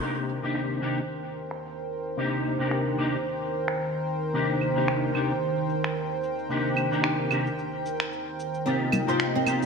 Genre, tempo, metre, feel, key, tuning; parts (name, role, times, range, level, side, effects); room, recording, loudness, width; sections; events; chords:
organic downtempo; 111 BPM; 4/4; swing 56% on 16ths; C minor; A4 = 441 Hz
electric guitar with an envelope filter; accompaniment; 0.0-9.6 s; C3 to G4; -28 LUFS; left 2 dB; ensemble chorus, ping-pong delay
warm analog pad; sustained chords; 0.3-9.7 s; Eb3 to G5; -28 LUFS; right 1 dB; chorus
electronic cabasa, claves and finger snaps; drums; 0.0-9.7 s; -32 LUFS; right 2 dB; low-pass filter on perc, studio reverb, low-pass filter on hats, low-pass filter on snare, gated reverb
flamenco guitar; arpeggios; 8.7-9.7 s; G3 to C5; -30 LUFS; right 1 dB; wide subtle chorus, ping-pong delay
congas; percussion; 8.9-9.6 s; -33 LUFS; left 1 dB
wet plate reverb, RT60 2.1 s; bright 1980s-style digital production; -25 LUFS; side -5 dB against mid
0.0-9.7 A section
filter sweep on drum 0.0-9.7
0.0 Cm7; 8.7 Ebadd9/C